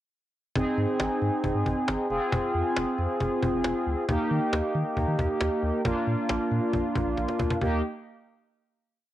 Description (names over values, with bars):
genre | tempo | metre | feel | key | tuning
synth-pop | 136 BPM | 4/4 | straight | Eb major | A4 = 437 Hz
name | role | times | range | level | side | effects
analog synth brass | accompaniment | 0.6-7.8 s | Bb3 to Ab4 | -26 LUFS | equal | chorus, cassette tape
round analog bass | bass | 0.6-7.8 s | F1 to Eb3 | -30 LUFS | equal | none
cajon | drums | 0.6-7.7 s | none | -30 LUFS | equal | cassette tape
room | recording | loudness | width
light reverb, small room ambience | home recording on cassette | -24 LUFS | side -13 dB against mid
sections
0.6-7.6 pre-chorus; 7.6-9.1 final chord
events
drum fill 7.2-7.6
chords
0.6 Ab; 2.1 Fm; 4.1 Eb; 5.9 Bb; 7.6 Eb